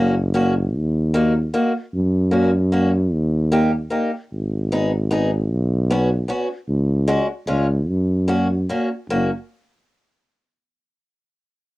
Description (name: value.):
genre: alpine folk, alpine dance band.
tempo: 151 BPM.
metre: 3/4.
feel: straight.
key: F# major.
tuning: A4 = 441 Hz.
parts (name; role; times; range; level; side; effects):
picked old ladder-braced acoustic guitar; accompaniment; 0.0-9.3 s; G#3 to G#4; -20 LUFS; equal; cassette tape.
mellow tuba; bass; 0.0-9.3 s; F#1 to F#2; -19 LUFS; equal; transformer saturation.
room: little or no reverb.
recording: home recording on cassette.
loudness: -18 LUFS.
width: side -19 dB against mid.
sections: 0.0-9.1 A section; 9.1-10.3 B section.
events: none.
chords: 0.0 F#; 0.8 D#m; 1.9 F#; 3.1 D#; 4.3 G#m; 5.5 Bsus2; 6.7 C#sus4; 7.5 C#; 7.9 F#.